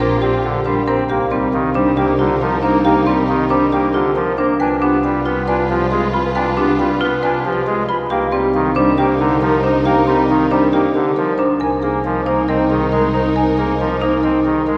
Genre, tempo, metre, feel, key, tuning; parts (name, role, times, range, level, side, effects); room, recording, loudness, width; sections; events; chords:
classical, minimalist pattern music; 137 BPM; 4/4; straight; C minor; A4 = 440 Hz
marimba with soft mallets; melody; 0.0-14.8 s; G4 to Ab5; -24 LUFS; equal
warm clarinet; second line; 0.0-14.8 s; Eb4 to F4; -25 LUFS; equal
chamber organ, soft reed; accompaniment; 0.0-14.8 s; D3 to D4; -24 LUFS; equal
warm symphonic string section; sustained chords; 0.0-14.8 s; Eb4 to B4; -28 LUFS; equal
marimba with hard mallets; arpeggios; 0.0-14.5 s; C4 to B4; -21 LUFS; equal
mellow concert flute; arpeggios; 0.0-13.4 s; G5 to C6; -31 LUFS; equal
warm double bass; bass; 0.0-14.8 s; Bb1 to C2; -26 LUFS; equal
wet church reverb, RT60 3.2 s; heard from further back in the room; -16 LUFS; mono
0.0-1.1 A section; 1.1-14.8 B section
0.0 Gm7/Bb; 1.1 Cm11; 4.6 G7b9/C; 8.1 Cm11; 11.6 Bb7sus4/C